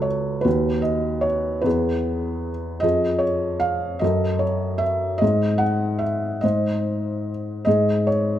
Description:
classical, lyrical solo piano; 50 BPM (dotted quarters); 6/8; rubato; A4 = 444 Hz
felt-muted upright piano; solo; 0.0-8.4 s; C#2 to F#5; -20 LUFS; equal
light reverb; close, detailed microphones; -20 LUFS; side -11 dB against mid
0.0-8.4 A section
0.5 D#m7; 1.7 E; 2.8 Fm7; 4.0 F#m; 5.2 N.C.; 6.4 G#; 7.7 N.C.

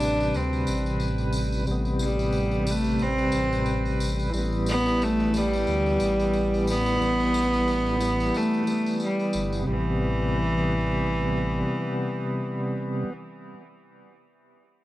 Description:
trip hop; 90 BPM; 4/4; swing 57% on 16ths; A minor; A4 = 440 Hz
bright cello; melody; 0.0-13.1 s; E3 to D4; -26 LUFS; equal; cassette tape, tape echo
bright tonewheel organ; accompaniment; 0.0-13.1 s; C3 to B4; -28 LUFS; equal; overdrive, slow rotary speaker, tremolo, tape echo
dark detuned saw bass; bass; 0.0-11.6 s; G1 to D2; -28 LUFS; equal; tube saturation
tambourine; percussion; 0.0-9.6 s; -39 LUFS; left 2 dB
light reverb; home recording on cassette; -22 LUFS; side -16 dB against mid
0.0-9.7 A section; 9.7-12.3 B section
0.0 Am7; 4.3 Em/A; 9.7 Am7

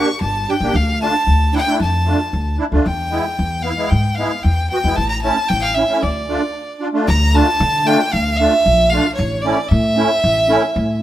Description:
klezmer; 114 BPM; 4/4; straight; D harmonic minor; A4 = 440 Hz
clear violin; melody; 0.0-11.0 s; C#5 to C#6; -18 LUFS; right 1 dB
musette accordion; accompaniment; 0.0-10.6 s; G#3 to G4; -20 LUFS; right 1 dB
upright bass; bass; 0.2-11.0 s; G1 to D3; -18 LUFS; left 1 dB
moderate stone room reverb, RT60 1.1 s; band playing live in one room; -14 LUFS; side -13 dB against mid
0.0-7.1 A section; 7.1-11.0 B section
0.0 Gm; 0.7 Dm; 2.9 E; 5.0 A; 6.0 Dm; 9.2 A

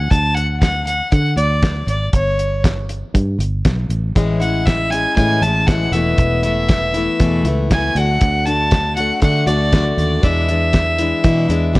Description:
folk rock and heartland rock; 119 BPM; 4/4; straight; A4 = 440 Hz
clear fiddle; melody; 0.0-11.8 s; C#5 to A5; -19 LUFS; equal
fingered electric bass; bass; 0.0-11.8 s; E1 to E3; -19 LUFS; equal
damped 70s drum kit; drums; 0.1-11.8 s; hi-hat, kick drum, snare drum; -16 LUFS; equal
picked plugged-in steel-string acoustic guitar; accompaniment; 4.2-11.8 s; E2 to F#4; -20 LUFS; left 3 dB
studio ambience; worn, warbling old tape, cassette tape, warbly pitch drift; -14 LUFS; side -20 dB against mid
0.0-11.8 A section
0.0 D; 2.1 N.C.; 4.2 Amaj7; 5.9 Esus4; 8.0 D; 10.2 E7

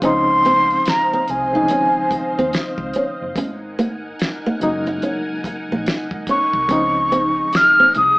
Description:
R&B, neo-soul; 72 BPM; 4/4; swing 62% on 16ths; Db major; A4 = 440 Hz
nylon-string guitar; second line; 0.0-8.0 s; Bb3 to Eb4; -23 LUFS; right 1 dB
barky reed electric piano; accompaniment; 0.0-8.2 s; Db3 to Eb4; -24 LUFS; left 1 dB; overdrive, fast tremolo
soft string machine; sustained chords; 0.0-8.2 s; C4 to Ab5; -27 LUFS; equal; phaser, ensemble chorus
vintage muted fingered electric bass; bass; 0.0-8.2 s; Gb1 to Eb2; -33 LUFS; equal
damped 70s drum kit; drums; 0.0-8.2 s; finger snaps, hi-hat, kick drum, snare drum; -23 LUFS; equal
breathy mellow concert flute; melody; 0.1-8.2 s; Ab5 to F6; -14 LUFS; equal
moderate studio reverb, RT60 0.6 s; band playing live in one room, AM radio sound; -16 LUFS; side -24 dB against mid
0.0-8.2 A section
0.0 Dbmaj9; 3.4 Ab9sus4; 6.7 Dbmaj9

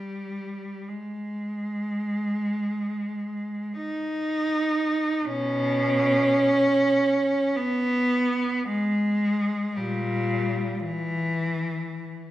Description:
classical, free, expressive piece for unaccompanied cello; 36-58 BPM; 4/4; rubato; A4 = 439 Hz
rich cello; solo; 0.0-12.3 s; A#2 to D#4; -23 LUFS; equal
moderate concert hall reverb, RT60 1.9 s; -23 LUFS; side -14 dB against mid
0.0-5.3 A section; 5.3-12.3 B section

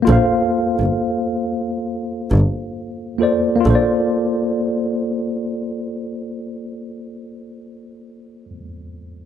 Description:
R&B; 67 BPM; 4/4; swing 60% on 16ths; Bb major; A4 = 440 Hz
tine electric piano; accompaniment; 0.0-9.3 s; Bb3 to F5; -20 LUFS; left 1 dB; overdrive, fast stereo tremolo
rich double bass; bass; 0.1-3.7 s; G1 to Bb1; -16 LUFS; equal
light reverb, small room ambience; -17 LUFS; side -9 dB against mid
0.0-3.6 A section; 3.6-7.2 B section
0.0 Bbmaj9

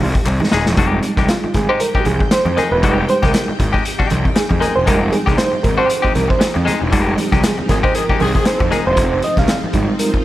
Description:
funk; 117 BPM; 4/4; swing 56% on 16ths; F minor; A4 = 438 Hz
semi-hollow electric guitar; accompaniment; 0.0-8.9 s; Ab3 to Ab4; -22 LUFS; left 5 dB; spring reverb
reed electric piano; stabs; 0.0-10.2 s; F3 to F5; -19 LUFS; right 3 dB; fast tremolo
fuzz picked electric bass; bass; 0.0-10.2 s; Eb1 to F2; -20 LUFS; equal; overdrive
vintage drum kit; drums; 0.0-10.2 s; hi-hat, kick drum, snare drum; -18 LUFS; equal
congas; percussion; 0.0-9.9 s; -28 LUFS; right 4 dB
group handclap; percussion; 0.3-9.6 s; -32 LUFS; left 4 dB
string machine, violins; sustained chords; 0.8-10.2 s; F3 to G5; -26 LUFS; equal; ensemble chorus
mellow horn section; second line; 7.7-8.7 s; Eb3 to Ab4; -24 LUFS; left 2 dB
light reverb, studio reverb; -13 LUFS; side -14 dB against mid
0.8-10.2 A section
drum fill 0.3-0.8; reed electric piano solo 0.8-10.2; band accent 6.9-9.0
0.0 Fm9

